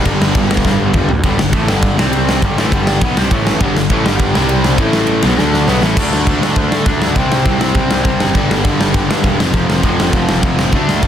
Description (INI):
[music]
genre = punk rock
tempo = 202 BPM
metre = 4/4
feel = straight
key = G major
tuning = A4 = 440 Hz
[part]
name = raw garage guitar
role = riff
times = 0.0-1.1, 3.6-11.1 s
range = F2 to D4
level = -19 LUFS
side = equal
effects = overdrive
[part]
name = sludgy distorted guitar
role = riff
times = 0.0-11.1 s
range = F2 to D4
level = -17 LUFS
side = equal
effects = overdrive
[part]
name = fuzz picked electric bass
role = bass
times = 0.0-11.1 s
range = E1 to D3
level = -18 LUFS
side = equal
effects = overdrive
[part]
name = big rock drum kit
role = drums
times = 0.1-11.1 s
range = crash cymbal, kick drum, ride cymbal, snare drum, toms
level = -15 LUFS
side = equal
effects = none
[sound]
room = light reverb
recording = dense, heavily limited modern master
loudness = -11 LUFS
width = side -9 dB against mid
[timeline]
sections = 0.0-1.2 A section; 1.2-6.0 B section; 6.0-11.1 C section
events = drum fill 0.7-1.2, 5.4-6.0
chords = 0.0 G5; 2.0 C5; 2.4 G; 3.3 A5; 3.6 G5; 4.3 C5; 4.8 A5; 5.2 B5; 5.4 D5; 5.7 B7sus4; 6.0 D5; 7.2 C5; 8.4 G5; 9.4 F5